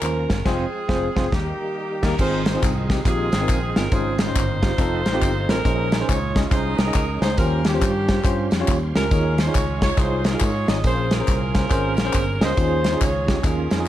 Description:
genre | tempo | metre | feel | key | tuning
uptempo gospel | 139 BPM | 4/4 | swing 63% on 8ths | Ab major | A4 = 440 Hz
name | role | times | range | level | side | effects
bright saxophone section | melody | 0.0-13.9 s | Bb3 to Eb5 | -26 LUFS | right 1 dB | none
bell-like tine electric piano | accompaniment | 0.0-13.9 s | Ab2 to Eb5 | -25 LUFS | equal | medium stereo tremolo
bright tonewheel organ | sustained chords | 0.0-13.9 s | Db3 to Db5 | -33 LUFS | right 4 dB | none
fingered electric bass | bass | 0.0-13.8 s | F1 to Ab2 | -25 LUFS | equal | none
natural country drum kit | drums | 0.0-13.8 s | crash cymbal, hi-hat, kick drum, snare drum | -22 LUFS | equal | none
handclaps and tambourine | percussion | 0.0-13.8 s | none | -34 LUFS | left 5 dB | none
room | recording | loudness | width
light reverb | dark, warm production | -18 LUFS | side -13 dB against mid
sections
0.0-2.2 A section; 2.2-13.9 B section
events
band accent 0.5-2.2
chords
0.5 Fm; 1.3 Eb; 2.2 Ab6; 3.9 Dbmaj9/Ab; 4.8 F7; 5.7 Bbm11; 7.4 Eb13; 9.1 Eb9sus4; 10.8 Bbm9; 12.6 Eb9sus4

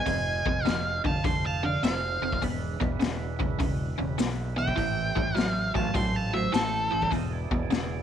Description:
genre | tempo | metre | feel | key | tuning
blues rock power trio and southern rock | 102 BPM | 4/4 | swing 66% on 8ths | A minor | A4 = 438 Hz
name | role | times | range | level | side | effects
octave-fuzz lead guitar | melody | 0.0-7.1 s | A4 to C6 | -30 LUFS | equal | distortion, slapback echo
vibraphone with hard mallets | second line | 0.0-7.1 s | E4 to A5 | -36 LUFS | right 13 dB | none
percussive tonewheel organ | sustained chords | 0.0-8.0 s | G#3 to D#5 | -40 LUFS | right 13 dB | slow rotary speaker, overdrive
overdriven electric guitar | riff | 0.0-8.0 s | E2 to F#3 | -31 LUFS | equal | none
growling fingered electric bass | bass | 0.1-8.0 s | E1 to B1 | -33 LUFS | equal | overdrive
raw garage drum kit | drums | 0.1-7.9 s | hi-hat, kick drum, snare drum | -30 LUFS | left 2 dB | none
room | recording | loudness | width
small room ambience | 1960s-style stereo | -25 LUFS | side -9 dB against mid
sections
0.0-8.0 A section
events
none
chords
0.1 F7; 2.4 E7; 4.8 Am7; 7.1 E7

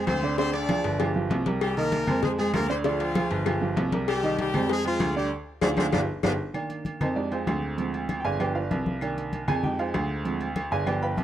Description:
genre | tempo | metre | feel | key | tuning
latin, salsa | 194 BPM | 4/4 | straight | C minor | A4 = 437 Hz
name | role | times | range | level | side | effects
brilliant horn section | melody | 0.0-6.3 s | F3 to D5 | -29 LUFS | left 2 dB | none
clear upright piano | accompaniment | 0.0-11.2 s | D3 to B5 | -29 LUFS | right 3 dB | none
bright baby grand piano | bass | 0.0-11.2 s | G1 to F2 | -30 LUFS | right 1 dB | none
agogo bells and timbales | percussion | 0.1-11.2 s | none | -36 LUFS | right 2 dB | none
claves | percussion | 0.1-11.0 s | none | -41 LUFS | left 9 dB | none
congas | percussion | 0.1-11.2 s | none | -30 LUFS | left 2 dB | none
cowbell | percussion | 0.1-6.3 s | none | -33 LUFS | left 9 dB | none
room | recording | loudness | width
studio reverb | dry, close 1970s-style studio recording | -24 LUFS | side -11 dB against mid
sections
0.0-6.5 A section; 6.5-11.2 B section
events
band accent 5.3-6.5; drum fill 6.1-6.5; upright piano solo 6.5-11.2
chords
0.4 Dm7b5; 1.0 G5; 1.6 Cm7; 2.2 Fm; 2.8 Ddim; 3.5 Gm7; 4.1 Cm7; 4.7 Fm; 5.3 Dm7b5; 5.9 G7(no3); 6.5 Cm7; 7.2 Fm7; 7.8 Dm7b5; 8.4 G7; 9.0 Cm7; 9.6 Fm7; 10.3 Dm7b5

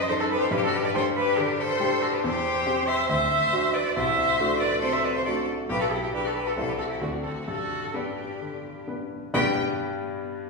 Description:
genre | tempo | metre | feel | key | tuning
quick classical-period movement for piano trio | 128-141 BPM | 4/4 | rubato | G major | A4 = 440 Hz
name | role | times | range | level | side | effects
rich violin | melody | 0.0-9.6 s | D4 to G5 | -30 LUFS | left 4 dB | none
rich cello | second line | 0.0-9.6 s | F#4 to E5 | -26 LUFS | right 1 dB | none
warm grand piano | accompaniment | 0.0-10.5 s | B1 to D5 | -28 LUFS | left 2 dB | none
room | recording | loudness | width
wet recital hall reverb, RT60 1.6 s | heard from further back in the room, studio reverb | -23 LUFS | side -2 dB against mid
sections
0.0-9.3 A section; 9.3-10.5 B section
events
none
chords
0.0 D7b9/F# (rootless); 0.5 G5; 2.2 C/E; 3.1 D; 4.0 D7/C; 5.7 G/B; 6.6 Am7/C; 7.0 D7; 7.5 G

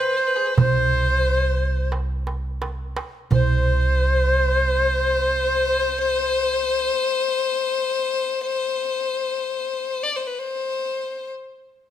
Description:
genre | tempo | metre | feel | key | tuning
Arabic maqam ensemble | 84 BPM (eighths) | 10/8 | straight | unclear | A4 = 441 Hz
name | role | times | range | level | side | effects
reedy shakuhachi | melody | 0.0-6.9 s | C5 | -22 LUFS | right 1 dB | none
bright violin | second line | 0.0-11.3 s | Ab4 to D5 | -23 LUFS | left 5 dB | none
upright bass | bass | 0.6-6.9 s | C2 | -23 LUFS | right 1 dB | none
darbuka | percussion | 0.6-4.0 s | none | -22 LUFS | right 4 dB | none
room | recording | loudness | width
light reverb | close, detailed microphones | -19 LUFS | side -11 dB against mid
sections
0.0-3.3 A section; 3.3-10.5 B section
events
slowing down 0.0-3.3; drum fill 1.9-3.3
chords
none

